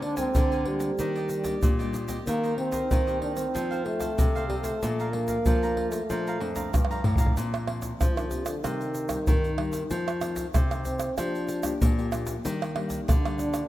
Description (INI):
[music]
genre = samba and choro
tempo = 94 BPM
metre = 4/4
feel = straight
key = Bb major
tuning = A4 = 438 Hz
[part]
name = breathy trombone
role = melody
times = 0.0-13.7 s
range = C3 to D4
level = -30 LUFS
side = right 1 dB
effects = none
[part]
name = cavaquinho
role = accompaniment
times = 0.0-7.4 s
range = D4 to Bb5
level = -38 LUFS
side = right 3 dB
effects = none
[part]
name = nylon-string guitar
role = accompaniment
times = 0.0-13.7 s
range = F2 to G4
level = -38 LUFS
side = left 4 dB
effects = none
[part]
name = nylon-string guitar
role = bass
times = 0.0-13.6 s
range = F2 to F3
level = -31 LUFS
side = left 1 dB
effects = none
[part]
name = pandeiro, egg shaker, surdo and tamborim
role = percussion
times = 0.0-13.7 s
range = none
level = -27 LUFS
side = equal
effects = none
[sound]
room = moderate lush hall reverb, RT60 2.6 s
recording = rough home demo mix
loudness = -24 LUFS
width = side -14 dB against mid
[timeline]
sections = 0.0-7.4 A section; 7.4-13.7 B section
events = drum fill 6.7-7.4; trombone solo 7.4-13.7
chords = 0.0 Bb7/D; 1.0 Ebmaj7; 2.3 Cm7/Eb; 3.5 F7; 4.8 Bbmaj7; 7.4 Bbadd9; 8.6 Cm; 9.9 F7; 11.2 Bb6/F; 12.5 Ebmaj7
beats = 0.35 0.99 1.63 | 2.27 2.91 3.54 4.18 | 4.82 5.46 6.09 6.73 | 7.37 8.00 8.64 9.28 | 9.91 10.55 11.18 11.82 | 12.45 13.09